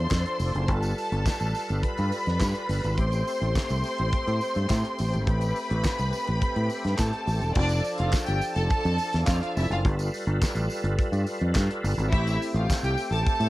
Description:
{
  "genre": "disco",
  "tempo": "105 BPM",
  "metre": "4/4",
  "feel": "straight",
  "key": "A minor",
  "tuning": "A4 = 441 Hz",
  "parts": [
    { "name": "warm symphonic violin section", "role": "second line", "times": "0.0-13.5 s", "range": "D4 to C6", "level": "-30 LUFS", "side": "equal", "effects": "none" },
    { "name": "overdriven tonewheel organ", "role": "sustained chords", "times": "0.0-13.5 s", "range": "F3 to B4", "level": "-34 LUFS", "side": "equal", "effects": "chorus vibrato, slow rotary speaker, low-pass filter" },
    { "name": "fingered electric bass", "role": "bass", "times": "0.0-13.5 s", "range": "E1 to A2", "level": "-25 LUFS", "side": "equal", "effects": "none" },
    { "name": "damped 70s drum kit", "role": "drums", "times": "0.1-13.5 s", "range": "crash cymbal, handclaps, hi-hat, kick drum, snare drum", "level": "-28 LUFS", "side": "equal", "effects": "cassette tape" },
    { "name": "tambourine", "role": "percussion", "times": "0.1-13.5 s", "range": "none", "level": "-43 LUFS", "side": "right 4 dB", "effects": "none" }
  ],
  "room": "small room ambience",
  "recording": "home recording on cassette",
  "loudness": "-23 LUFS",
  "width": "side -17 dB against mid",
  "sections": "0.0-7.6 A section; 7.6-13.5 B section",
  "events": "none",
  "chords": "0.0 F6; 0.7 G9; 3.0 Am7; 7.6 F6; 9.8 G9; 12.1 Am7",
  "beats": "0.11 | 0.69 1.26 1.83 2.41 | 2.98 3.55 4.13 4.70 | 5.27 5.85 6.42 6.99 | 7.56 8.13 8.70 9.27 | 9.84 10.41 10.98 11.55 | 12.12 12.69 13.26"
}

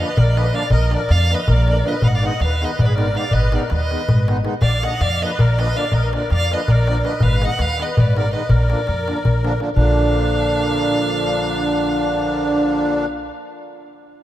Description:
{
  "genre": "balkan folk, Balkan wedding band",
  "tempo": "325 BPM (eighths)",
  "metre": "7/8",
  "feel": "straight",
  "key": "unclear",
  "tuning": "A4 = 440 Hz",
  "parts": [
    { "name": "rich violin", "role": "melody", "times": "0.0-13.1 s", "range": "Cb5 to Gb5", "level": "-24 LUFS", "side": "right 1 dB", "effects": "diffuse ambient delay" },
    { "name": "musette accordion", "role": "second line", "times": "0.0-13.1 s", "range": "D4 to Eb5", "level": "-26 LUFS", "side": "left 4 dB", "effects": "diffuse ambient delay" },
    { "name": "accordion", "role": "accompaniment", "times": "0.0-13.1 s", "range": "D3 to Eb4", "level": "-23 LUFS", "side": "right 1 dB", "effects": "light tremolo tuning" },
    { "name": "darbuka", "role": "percussion", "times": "0.1-10.0 s", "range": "none", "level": "-19 LUFS", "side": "left 1 dB", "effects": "none" },
    { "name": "upright bass", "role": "bass", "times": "0.2-13.3 s", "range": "Ab1 to F2", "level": "-20 LUFS", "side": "equal", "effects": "none" }
  ],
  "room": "moderate plate reverb, RT60 3.6 s",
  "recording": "dreamy mix soaked in reverb",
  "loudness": "-15 LUFS",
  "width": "side -13 dB against mid",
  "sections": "0.0-9.8 A section; 9.8-12.3 B section",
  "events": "speeding up 0.0-12.3",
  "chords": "0.0 Bb; 2.0 Abm; 4.6 Bb; 7.2 Abm; 8.5 Bb",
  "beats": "0.14 0.32 0.51 | 0.70 0.89 1.07 1.26 1.45 1.64 1.82 | 2.01 2.20 2.38 2.57 2.76 2.95 3.13 | 3.32 3.50 3.69 3.88 4.06 4.25 4.43 | 4.62 4.81 4.99 5.18 5.36 5.55 5.73 | 5.92 6.10 6.29 6.47 6.65 6.84 7.02 | 7.21 7.39 7.57 7.76 7.94 8.12 8.31 | 8.49 8.67 8.85 9.04 9.22 9.40 9.58 | 9.77 9.95 10.13 10.31 10.49 10.67 10.85 | 11.03 11.21 11.39 11.58 11.76 11.94 12.12"
}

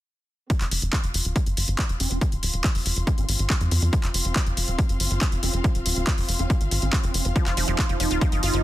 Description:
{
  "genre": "psychedelic trance",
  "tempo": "140 BPM",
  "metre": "4/4",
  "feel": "straight",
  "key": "unclear",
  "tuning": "A4 = 440 Hz",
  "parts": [
    { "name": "electronic kick drum", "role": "drums", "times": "0.5-8.3 s", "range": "none", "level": "-23 LUFS", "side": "equal", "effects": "overdrive, studio ambience" },
    { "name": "techno drum kit", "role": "drums", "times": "0.5-8.6 s", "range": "handclaps, hi-hat", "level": "-28 LUFS", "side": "equal", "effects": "overdrive, studio ambience" },
    { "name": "dark studio string section", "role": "texture", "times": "0.5-8.6 s", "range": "C4 to C6", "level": "-34 LUFS", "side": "left 1 dB", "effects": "sidechain pumping" },
    { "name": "tight sequencer bass", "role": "bass", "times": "0.6-8.6 s", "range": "Eb1 to F2", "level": "-25 LUFS", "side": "equal", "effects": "tube saturation" },
    { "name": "vowel-sweep wobble bass", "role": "second line", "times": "2.0-7.2 s", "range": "C4", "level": "-36 LUFS", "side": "right 2 dB", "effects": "ensemble chorus, sidechain pumping, high-pass filter, dub echo" },
    { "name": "evolving wavetable pad", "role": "sustained chords", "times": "7.5-8.6 s", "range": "Eb4", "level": "-29 LUFS", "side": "right 4 dB", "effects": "ensemble chorus, built-in reverb, phaser, sidechain pumping" },
    { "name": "wide unison pluck", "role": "riff", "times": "7.4-8.6 s", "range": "F3 to F4", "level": "-28 LUFS", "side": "moving between left 6 dB and right 6 dB", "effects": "auto-pan, sidechain pumping, ping-pong delay" }
  ],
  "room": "digital ambience",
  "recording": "dense, heavily limited modern master",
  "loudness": "-21 LUFS",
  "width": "side -15 dB against mid",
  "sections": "0.5-8.6 A section",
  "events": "fade-in on string section 0.5-8.6",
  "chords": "0.5 F5",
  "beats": "| 0.50 0.93 1.36 1.79 | 2.21 2.64 3.07 3.50 | 3.93 4.36 4.79 5.21 | 5.64 6.07 6.50 6.93 | 7.36 7.79 8.21"
}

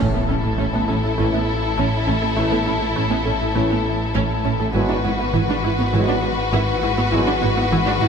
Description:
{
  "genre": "cinematic, hybrid orchestral and electronic film score",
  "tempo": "101 BPM",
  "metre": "4/4",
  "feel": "straight",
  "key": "unclear",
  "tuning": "A4 = 440 Hz",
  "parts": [
    { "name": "warm symphonic violin section", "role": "melody", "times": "0.0-8.1 s", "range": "A4 to B4", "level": "-26 LUFS", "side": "left 5 dB", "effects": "none" },
    { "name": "warm symphonic violin section", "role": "second line", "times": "0.0-8.1 s", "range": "E4 to F#4", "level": "-25 LUFS", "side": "left 3 dB", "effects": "none" },
    { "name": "warm symphonic viola section", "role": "accompaniment", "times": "0.0-8.1 s", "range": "A3 to E4", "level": "-26 LUFS", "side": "right 3 dB", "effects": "none" },
    { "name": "clear trombone section", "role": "sustained chords", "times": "0.0-7.3 s", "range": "E3 to A3", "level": "-29 LUFS", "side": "right 4 dB", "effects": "none" },
    { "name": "dark French horn section", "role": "sustained chords", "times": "0.0-7.3 s", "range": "B3 to E4", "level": "-29 LUFS", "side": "left 3 dB", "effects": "none" },
    { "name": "tight sequenced synth", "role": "arpeggios", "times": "0.0-8.1 s", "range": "E3 to A4", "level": "-28 LUFS", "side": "equal", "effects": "chorus, ping-pong delay" },
    { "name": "detuned saw bass", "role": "bass", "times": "0.0-8.1 s", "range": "G#1 to A1", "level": "-26 LUFS", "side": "equal", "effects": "none" },
    { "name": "warm symphonic cello section", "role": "bass", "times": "0.0-8.1 s", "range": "G#2 to A2", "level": "-28 LUFS", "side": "right 2 dB", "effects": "none" },
    { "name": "warm symphonic double bass section", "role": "bass", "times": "0.0-8.1 s", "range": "G#1 to A1", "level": "-26 LUFS", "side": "right 3 dB", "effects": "none" },
    { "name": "impact", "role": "sound effects", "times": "0.0-2.4 s", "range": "none", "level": "-29 LUFS", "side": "equal", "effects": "none" }
  ],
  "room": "wet scoring stage reverb, RT60 1.6 s",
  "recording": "none",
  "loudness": "-17 LUFS",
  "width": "side -6 dB against mid",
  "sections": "0.0-8.1 A section",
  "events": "impact 0.0-2.4",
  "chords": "0.0 A; 4.8 Eadd9/G#",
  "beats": "| 0.00 0.59 1.19 1.78 | 2.38 2.97 3.56 4.16 | 4.75 5.35 5.94 6.53 | 7.13 7.72"
}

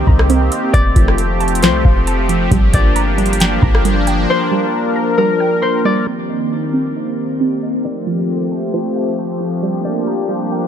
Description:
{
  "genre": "hip hop, atmospheric cloud-rap",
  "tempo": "135 BPM",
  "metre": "4/4",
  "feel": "half-time",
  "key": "G minor",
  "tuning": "A4 = 439 Hz",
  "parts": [
    { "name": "concert harp", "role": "melody", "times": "0.0-10.7 s", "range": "Bb4 to Eb5", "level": "-22 LUFS", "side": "left 2 dB", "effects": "low-pass filter, tape echo" },
    { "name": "sweeping resonant pad", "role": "sustained chords", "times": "0.0-10.7 s", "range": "Eb3 to Bb4", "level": "-18 LUFS", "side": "left 1 dB", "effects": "chorus, sidechain pumping, low-pass filter" },
    { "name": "warbly dusty pluck", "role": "arpeggios", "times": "0.0-10.7 s", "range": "F3 to Bb5", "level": "-22 LUFS", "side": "right 6 dB", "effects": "chorus, low-pass filter, tape echo" },
    { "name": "clean 808-style bass", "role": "bass", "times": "0.0-4.3 s", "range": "F1 to C2", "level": "-16 LUFS", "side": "equal", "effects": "none" },
    { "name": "booming analog drum machine", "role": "drums", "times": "0.1-4.2 s", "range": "hi-hat, kick drum, rim click, snare drum", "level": "-15 LUFS", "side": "equal", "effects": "none" }
  ],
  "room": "light reverb",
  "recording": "none",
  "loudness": "-13 LUFS",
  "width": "side -9 dB against mid",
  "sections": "0.0-6.1 A section; 6.1-10.7 B section",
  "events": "drums muted 4.3-6.1; filter sweep 6.1-10.7",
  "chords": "0.0 Cm7; 0.7 Fadd9; 2.5 Gm7; 6.1 Cm7; 7.8 Fadd9; 9.6 Gm7",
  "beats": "0.29 | 0.74 1.18 1.63 2.07 | 2.52 2.96 3.40 3.85 | 4.29 4.74 5.18 5.63 | 6.07 6.52 6.96 7.41 | 7.85 8.29 8.74 9.18 | 9.63 10.07 10.52"
}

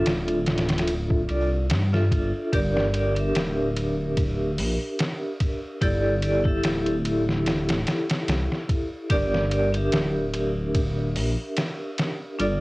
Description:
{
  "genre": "trip hop",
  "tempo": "73 BPM",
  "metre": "4/4",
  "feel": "swing 55% on 16ths",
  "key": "G dorian",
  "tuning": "A4 = 440 Hz",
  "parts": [
    { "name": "vibraphone with hard mallets", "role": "accompaniment", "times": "0.0-12.6 s", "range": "D4 to E5", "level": "-26 LUFS", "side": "equal", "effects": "tremolo, cassette tape, tape echo" },
    { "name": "dark detuned saw bass", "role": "bass", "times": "0.0-12.6 s", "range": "D1 to G2", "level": "-26 LUFS", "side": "equal", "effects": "none" },
    { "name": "trip hop sampler-style drum kit", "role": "drums", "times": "0.1-12.6 s", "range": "hi-hat, kick drum, ride cymbal, snare drum", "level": "-27 LUFS", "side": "equal", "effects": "none" }
  ],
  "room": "light reverb",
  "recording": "home recording on cassette",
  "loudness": "-22 LUFS",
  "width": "side -22 dB against mid",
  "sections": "0.0-12.6 A section",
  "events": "none",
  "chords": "0.0 Dm; 2.5 Gm; 5.8 C6; 9.1 Gm",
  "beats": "0.07 0.89 1.71 | 2.53 3.35 4.18 5.00 | 5.82 6.64 7.46 8.29 | 9.11 9.93 10.75 11.57 | 12.39"
}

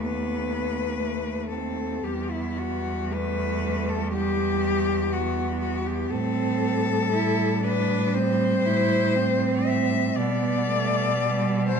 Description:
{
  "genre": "classical, lyrical piece for cello ensemble",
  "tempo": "59 BPM",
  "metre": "4/4",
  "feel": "rubato",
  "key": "unclear",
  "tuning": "A4 = 440 Hz",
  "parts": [
    { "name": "rich cello", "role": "melody", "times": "0.0-11.8 s", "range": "E4 to E5", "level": "-27 LUFS", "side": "left 6 dB", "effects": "none" },
    { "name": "rich cello", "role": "second line", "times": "0.0-11.8 s", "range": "F#3 to E4", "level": "-28 LUFS", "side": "right 7 dB", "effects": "none" },
    { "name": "rich cello", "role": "accompaniment", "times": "0.0-11.8 s", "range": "G3 to A3", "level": "-30 LUFS", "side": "left 2 dB", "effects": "none" },
    { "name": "rich cello", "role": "bass", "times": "0.0-11.8 s", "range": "D#2 to B2", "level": "-28 LUFS", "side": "right 2 dB", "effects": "none" }
  ],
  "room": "moderate recital hall reverb, RT60 1.6 s",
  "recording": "dark, warm production",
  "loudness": "-22 LUFS",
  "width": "side -6 dB against mid",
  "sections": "0.0-11.8 A section",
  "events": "none",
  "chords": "0.0 B7/D#; 2.0 Em; 6.1 Am7; 10.2 G/B",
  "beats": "0.00 1.00 | 2.03 3.11 4.12 5.13 | 6.12 7.13 8.14 9.15 | 10.16 11.19"
}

